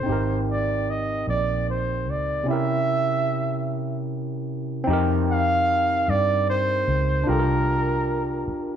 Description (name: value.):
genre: slow six-eight R&B.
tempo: 50 BPM (dotted quarters).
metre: 6/8.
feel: straight.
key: unclear.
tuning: A4 = 440 Hz.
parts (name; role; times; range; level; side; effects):
breathy flugelhorn; melody; 0.0-8.8 s; Bb4 to F5; -24 LUFS; right 2 dB; none.
overdriven tine electric piano; accompaniment; 0.0-8.8 s; C3 to Bb4; -26 LUFS; right 1 dB; none.
vintage muted fingered electric bass; bass; 0.0-8.5 s; Ab1 to G2; -25 LUFS; left 1 dB; none.
room: moderate large studio reverb, RT60 1.1 s.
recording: band playing live in one room.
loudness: -21 LUFS.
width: side -9 dB against mid.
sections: 0.0-4.9 A section; 4.9-8.8 B section.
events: none.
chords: 0.1 Abmaj9; 2.5 C7b9; 4.9 F9sus4; 7.3 C9sus4.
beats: | 0.07 1.27 | 2.47 3.67 | 4.87 6.07 | 7.27 8.47.